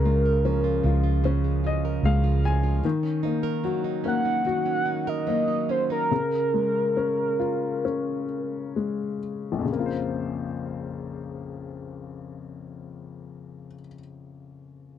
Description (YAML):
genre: pop ballad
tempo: 63-75 BPM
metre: 4/4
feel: straight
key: Bb minor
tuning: A4 = 440 Hz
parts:
  - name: warm velvety synth lead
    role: melody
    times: 0.0-8.7 s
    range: Bb4 to Gb5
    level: -26 LUFS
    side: right 2 dB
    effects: chorus, tremolo
  - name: warm upright piano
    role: accompaniment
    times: 0.0-15.0 s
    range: Bb1 to Ab5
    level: -28 LUFS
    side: left 6 dB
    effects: none
  - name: flamenco guitar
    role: arpeggios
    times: 0.0-6.7 s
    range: Db3 to Bb4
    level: -30 LUFS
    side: right 12 dB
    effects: none
  - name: vintage muted fingered electric bass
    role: bass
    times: 0.0-2.8 s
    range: Db2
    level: -23 LUFS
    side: equal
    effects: none
room: little or no reverb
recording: dry, close 1970s-style studio recording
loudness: -23 LUFS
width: side -10 dB against mid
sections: 0.0-9.7 A section; 9.7-13.5 B section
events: upright piano fill 1.2-2.8; slowing down 2.8-9.7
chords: 0.0 Bbm7/Db; 2.8 Ebm7; 6.1 Bbm7/Db; 9.7 Bbmadd9